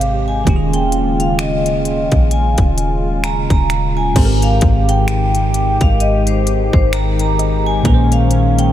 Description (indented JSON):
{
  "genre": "contemporary R&B",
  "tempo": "65 BPM",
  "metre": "4/4",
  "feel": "swing 58% on 16ths",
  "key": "Ab major",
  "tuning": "A4 = 440 Hz",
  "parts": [
    { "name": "vibraphone with medium hard mallets", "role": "melody", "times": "0.0-8.7 s", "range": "C5 to Bb5", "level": "-20 LUFS", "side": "equal", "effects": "diffuse ambient delay" },
    { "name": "bell-like tine electric piano", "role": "accompaniment", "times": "0.0-8.7 s", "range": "Ab2 to C5", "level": "-19 LUFS", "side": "right 1 dB", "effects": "phaser" },
    { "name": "warm analog pad", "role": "sustained chords", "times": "0.0-8.7 s", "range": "C3 to G4", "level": "-20 LUFS", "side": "left 2 dB", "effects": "chorus, sidechain pumping" },
    { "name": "clean 808-style bass", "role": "bass", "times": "0.0-8.7 s", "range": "Eb1 to Bb1", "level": "-18 LUFS", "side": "equal", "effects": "none" },
    { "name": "trap drum kit", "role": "drums", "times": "0.0-8.7 s", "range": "crash cymbal, finger snaps, hi-hat, kick drum", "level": "-18 LUFS", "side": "equal", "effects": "none" },
    { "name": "soft round pluck", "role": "texture", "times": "4.2-8.3 s", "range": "C5 to Eb5", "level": "-36 LUFS", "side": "equal", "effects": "none" }
  ],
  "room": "light reverb",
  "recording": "none",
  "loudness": "-12 LUFS",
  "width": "side -11 dB against mid",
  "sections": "0.0-4.2 A section; 4.2-8.7 B section",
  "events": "none",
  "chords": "0.5 Eb9sus4; 4.2 Abmaj7; 7.9 Bbm9"
}